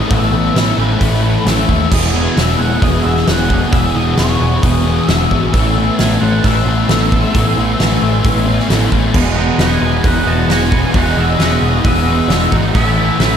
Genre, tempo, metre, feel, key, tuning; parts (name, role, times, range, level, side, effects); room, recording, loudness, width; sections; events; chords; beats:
rock, shoegaze and dream pop; 133 BPM; 4/4; straight; E major; A4 = 438 Hz
octave-fuzz lead guitar; melody; 0.0-13.4 s; B4 to A5; -21 LUFS; left 2 dB; distortion, ping-pong delay
analog string pad; sustained chords; 0.0-13.4 s; B3 to D#6; -24 LUFS; right 2 dB; ensemble chorus
cranked stack guitar; riff; 0.0-13.4 s; E2 to A3; -20 LUFS; right 2 dB; overdrive, ensemble chorus
thick fuzz guitar; riff; 0.0-13.4 s; E2 to A3; -18 LUFS; left 5 dB; distortion, analog chorus
growling picked electric bass; bass; 0.1-13.4 s; E1 to D#2; -17 LUFS; right 1 dB; overdrive
huge arena drum kit; drums; 0.1-13.3 s; crash cymbal, hi-hat, kick drum, snare drum; -17 LUFS; right 1 dB
twangy electric guitar; arpeggios; 9.1-13.4 s; G#3 to B4; -26 LUFS; left 1 dB; lush chorus, ping-pong delay
twangy electric guitar; riff; 9.1-13.4 s; E2 to F#4; -22 LUFS; right 10 dB; reverse reverb
moderate lush hall reverb, RT60 1.9 s, studio reverb; dreamy mix soaked in reverb; -11 LUFS; side -8 dB against mid
0.0-13.4 A section
0.0 Asus2; 1.9 Emaj9; 5.5 Amadd9; 9.1 Emaj9; 12.7 Amadd9
| 0.10 0.55 1.01 1.46 | 1.91 2.36 2.82 3.27 | 3.72 4.17 4.63 5.08 | 5.53 5.98 6.43 6.88 | 7.34 7.79 8.24 8.69 | 9.14 9.59 10.04 10.49 | 10.94 11.39 11.84 12.29 | 12.74 13.19